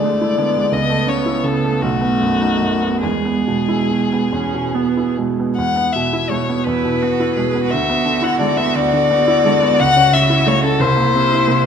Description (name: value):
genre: classical, slow romantic movement for piano quartet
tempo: 46-60 BPM (dotted quarters)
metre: 6/8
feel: rubato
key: E major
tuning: A4 = 440 Hz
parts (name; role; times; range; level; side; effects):
- rich violin; melody; 0.0-11.7 s; F#4 to F#5; -18 LUFS; left 6 dB; none
- bright grand piano; accompaniment; 0.0-11.7 s; B1 to E4; -18 LUFS; right 3 dB; none
- dark viola; accompaniment; 0.0-11.7 s; G#3 to C#4; -23 LUFS; right 4 dB; none
- clear cello; second line; 6.7-11.7 s; E4 to G#4; -22 LUFS; right 6 dB; none
room: wet recital hall reverb, RT60 1.5 s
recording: none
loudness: -14 LUFS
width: side -7 dB against mid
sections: 0.0-5.6 A section; 5.6-11.7 A section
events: none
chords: 0.0 E7/D; 0.7 A/C#; 1.8 B7; 3.0 E; 7.7 E7/D; 9.8 A/C#; 10.8 C7